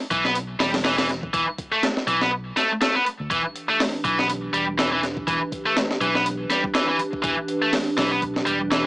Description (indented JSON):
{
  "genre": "breakbeat, breaks",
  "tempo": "122 BPM",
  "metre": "4/4",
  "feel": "swing 57% on 16ths",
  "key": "E minor",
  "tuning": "A4 = 440 Hz",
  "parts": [
    { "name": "scooped high-gain guitar", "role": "riff", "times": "0.1-8.8 s", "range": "E3 to B3", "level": "-22 LUFS", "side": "equal", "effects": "distortion, overdrive, tape echo" },
    { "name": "fingered electric bass", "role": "bass", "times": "0.1-8.9 s", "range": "E1 to D2", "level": "-34 LUFS", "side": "equal", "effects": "tube saturation" },
    { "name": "breakbeat sampler-style drum kit", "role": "drums", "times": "0.1-8.8 s", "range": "hi-hat, kick drum, snare drum", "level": "-25 LUFS", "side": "equal", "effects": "studio reverb" },
    { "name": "warbly tape-like pad", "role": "sustained chords", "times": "3.3-8.9 s", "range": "E3 to B4", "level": "-28 LUFS", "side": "right 1 dB", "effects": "chorus, built-in reverb, sidechain pumping" }
  ],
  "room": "light reverb",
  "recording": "dry, gritty hardware recording, transformer saturation, small speaker sound",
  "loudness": "-20 LUFS",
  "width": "side -25 dB against mid",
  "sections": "0.0-8.9 A section",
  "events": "kick drops out 2.3-3.3",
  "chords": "0.0 Em7"
}